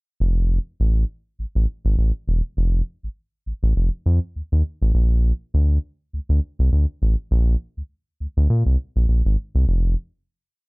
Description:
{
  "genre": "funk",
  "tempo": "101 BPM",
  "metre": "4/4",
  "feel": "swing 56% on 16ths",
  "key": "F mixolydian",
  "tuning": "A4 = 436 Hz",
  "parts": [
    { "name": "round analog bass", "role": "solo", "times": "0.2-10.0 s", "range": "E1 to Bb2", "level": "-17 LUFS", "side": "equal", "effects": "none" }
  ],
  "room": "little or no reverb",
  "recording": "dry, close 1970s-style studio recording",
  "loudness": "-19 LUFS",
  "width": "side -31 dB against mid",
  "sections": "0.2-9.7 groove; 9.7-10.7 final chord",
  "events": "none",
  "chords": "none"
}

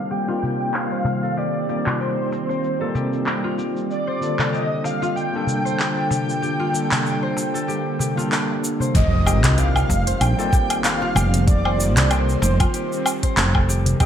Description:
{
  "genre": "organic downtempo",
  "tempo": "95 BPM",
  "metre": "4/4",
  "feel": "swing 56% on 16ths",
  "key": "unclear",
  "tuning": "A4 = 444 Hz",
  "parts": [
    { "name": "breathy flute-like synth lead", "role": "melody", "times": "0.0-14.1 s", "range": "C5 to G5", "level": "-26 LUFS", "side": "equal", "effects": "tremolo, ensemble chorus, ping-pong delay" },
    { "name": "overdriven tine electric piano", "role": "accompaniment", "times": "0.0-12.9 s", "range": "D3 to Bb4", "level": "-27 LUFS", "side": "left 1 dB", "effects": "fast tremolo, sidechain pumping, ping-pong delay" },
    { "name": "bowed-like drone", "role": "sustained chords", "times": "0.0-14.1 s", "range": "D3 to A4", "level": "-28 LUFS", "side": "right 2 dB", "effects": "built-in reverb, sidechain pumping" },
    { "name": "concert harp", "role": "arpeggios", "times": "0.0-14.1 s", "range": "F4 to C5", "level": "-30 LUFS", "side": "left 3 dB", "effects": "ping-pong delay" },
    { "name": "organic electronic drum kit", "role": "drums", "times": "0.1-14.1 s", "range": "cabasa, handclaps, hi-hat, woodblock", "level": "-24 LUFS", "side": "equal", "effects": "gated reverb" },
    { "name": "darbuka", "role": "percussion", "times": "0.4-14.1 s", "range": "none", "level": "-28 LUFS", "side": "left 1 dB", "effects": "none" },
    { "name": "woody fretless electric bass", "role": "bass", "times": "8.9-14.1 s", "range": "F1 to C2", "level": "-19 LUFS", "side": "equal", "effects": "sidechain pumping" },
    { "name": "electronic kick drum", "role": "drums", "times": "8.9-14.1 s", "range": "none", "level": "-18 LUFS", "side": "equal", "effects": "none" },
    { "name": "impact", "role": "sound effects", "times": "8.9-11.5 s", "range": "none", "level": "-27 LUFS", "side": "equal", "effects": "none" }
  ],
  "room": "moderate plate reverb, RT60 1.9 s",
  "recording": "bright 1980s-style digital production, low-pass filter",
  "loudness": "-18 LUFS",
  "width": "side -9 dB against mid",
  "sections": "0.0-8.9 A section; 8.9-14.1 B section",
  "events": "filter sweep on synth drone 0.0-8.9; filter sweep 0.0-8.9; impact 8.9-11.5",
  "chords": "0.0 F9sus4; 3.9 Gm9; 8.9 F9sus4"
}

